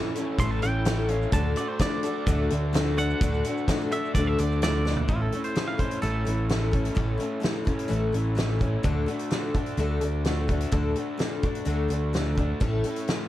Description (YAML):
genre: folk rock and heartland rock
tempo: 128 BPM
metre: 4/4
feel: straight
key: D major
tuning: A4 = 439 Hz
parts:
  - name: twangy electric guitar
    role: second line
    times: 0.0-7.4 s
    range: F4 to C6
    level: -33 LUFS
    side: right 3 dB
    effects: none
  - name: picked steel-string acoustic guitar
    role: accompaniment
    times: 0.0-13.3 s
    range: A2 to A4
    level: -30 LUFS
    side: left 4 dB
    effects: none
  - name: tonewheel organ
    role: sustained chords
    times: 0.0-5.1, 12.6-13.3 s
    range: C#4 to A4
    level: -39 LUFS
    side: right 1 dB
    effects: none
  - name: raw garage guitar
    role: riff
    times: 0.0-13.3 s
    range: A2 to D4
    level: -33 LUFS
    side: right 2 dB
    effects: overdrive
  - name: loose indie drum kit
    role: drums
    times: 0.2-13.2 s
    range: hi-hat, kick drum, snare drum, toms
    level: -28 LUFS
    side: equal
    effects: none
  - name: tube shaker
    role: percussion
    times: 0.2-5.0 s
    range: none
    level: -48 LUFS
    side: right 6 dB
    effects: none
  - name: picked electric bass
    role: bass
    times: 0.4-12.8 s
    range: A1 to D2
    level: -27 LUFS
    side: equal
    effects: none
room: light reverb, small room ambience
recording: dark, warm production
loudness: -23 LUFS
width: side -14 dB against mid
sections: 0.0-5.1 A section; 5.1-13.3 B section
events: clean electric guitar solo 0.0-5.1; drum fill 4.9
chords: 0.0 A; 1.3 D; 5.1 A; 8.9 D; 12.6 A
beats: 0.39 0.86 | 1.33 1.80 2.27 2.74 | 3.21 3.68 4.15 4.62 | 5.09 5.56 6.03 6.50 | 6.97 7.44 7.91 8.38 | 8.85 9.32 9.79 10.27 | 10.74 11.21 11.68 12.15 | 12.62 13.09